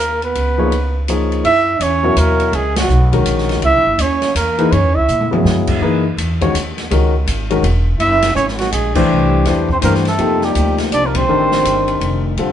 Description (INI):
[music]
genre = modal jazz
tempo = 165 BPM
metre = 3/4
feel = swing 63% on 8ths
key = F# mixolydian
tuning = A4 = 440 Hz
[part]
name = mellow trumpet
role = melody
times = 0.0-5.3, 8.0-12.2 s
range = F#4 to E5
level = -17 LUFS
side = right 2 dB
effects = none
[part]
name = breathy trombone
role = second line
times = 0.0-5.3, 8.0-12.2 s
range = F#3 to E4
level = -22 LUFS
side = right 5 dB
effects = none
[part]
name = upright bass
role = bass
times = 0.0-12.5 s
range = E1 to A#2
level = -18 LUFS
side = equal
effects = none
[part]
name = open jazz drum kit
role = drums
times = 0.2-12.5 s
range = crash cymbal, hi-hat, kick drum, ride cymbal, snare drum, toms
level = -23 LUFS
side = equal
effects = none
[part]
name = warm concert grand piano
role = accompaniment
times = 0.6-12.5 s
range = B2 to Db5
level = -17 LUFS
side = left 3 dB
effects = none
[sound]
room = moderate stone room reverb, RT60 1.1 s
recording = band playing live in one room, nothing above 10.8 kHz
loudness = -13 LUFS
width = side -10 dB against mid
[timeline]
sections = 0.0-1.4 A section; 1.4-10.2 B section; 10.2-12.5 C section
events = band accent 2.7, 8.9, 11.1; drum fill 5.1-5.5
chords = 0.3 Db9; 1.4 F#13; 9.1 Cadd9; 10.2 F13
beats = | 0.35 0.71 1.08 | 1.44 1.81 2.17 | 2.53 2.90 3.26 | 3.63 3.99 4.36 | 4.72 5.09 5.45 | 5.82 6.18 6.54 | 6.91 7.27 7.64 | 8.00 8.37 8.73 | 9.10 9.46 9.83 | 10.19 10.55 10.92 | 11.28 11.65 12.01 | 12.37